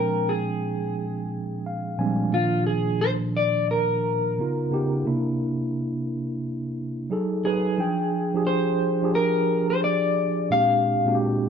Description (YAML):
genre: R&B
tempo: 88 BPM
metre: 4/4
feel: swing 63% on 16ths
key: F dorian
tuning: A4 = 440 Hz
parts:
  - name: clean electric guitar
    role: melody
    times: 0.0-11.2 s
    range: F4 to F5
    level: -25 LUFS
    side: left 2 dB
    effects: wide subtle chorus, slapback echo, plate reverb
  - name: mellow tine electric piano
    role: accompaniment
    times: 0.0-11.5 s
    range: Bb2 to Ab5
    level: -24 LUFS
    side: right 2 dB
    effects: medium stereo tremolo
room: wet small room reverb, RT60 0.6 s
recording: none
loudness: -22 LUFS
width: side -7 dB against mid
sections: 0.0-7.8 A section; 7.8-11.5 B section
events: tine electric piano fill 1.3-2.3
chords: 0.0 Bb13; 2.3 Ebsus2/Bb; 4.4 Db9; 5.0 C9; 7.1 Gbm69; 7.8 Fm69; 10.5 Bb13